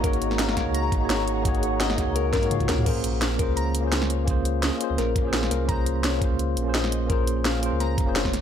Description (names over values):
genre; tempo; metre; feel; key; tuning
liquid drum and bass; 170 BPM; 4/4; straight; Bb minor; A4 = 440 Hz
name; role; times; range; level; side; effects
tine electric piano; accompaniment; 0.0-8.4 s; Bb3 to Db5; -27 LUFS; equal; medium stereo tremolo, digital delay
ethereal airy pad; sustained chords; 0.0-2.8 s; Ab4 to Bb5; -32 LUFS; left 2 dB; ensemble chorus, built-in reverb, sidechain pumping
harp-like synth pluck; arpeggios; 0.0-8.3 s; F4 to Bb5; -32 LUFS; left 6 dB; chorus, tape echo
sub bass with octave; bass; 0.0-8.4 s; F1 to Ab2; -27 LUFS; equal; tube saturation
drum and bass drum kit; drums; 0.0-8.4 s; crash cymbal, hi-hat, snare drum, toms; -28 LUFS; equal; overdrive
electronic kick drum; drums; 0.0-8.3 s; none; -26 LUFS; equal; none
room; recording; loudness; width
little or no reverb; none; -21 LUFS; side -9 dB against mid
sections
0.0-2.9 A section; 2.9-8.4 A section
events
drop 0.0-2.9, 2.9-8.4; drum fill 2.3-2.9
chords
0.0 Ab9sus4; 2.9 Bbm9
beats
| 0.04 0.39 0.74 1.10 | 1.45 1.80 2.16 2.51 | 2.86 3.22 3.57 3.92 | 4.28 4.63 4.98 5.33 | 5.69 6.04 6.39 6.75 | 7.10 7.45 7.80 8.16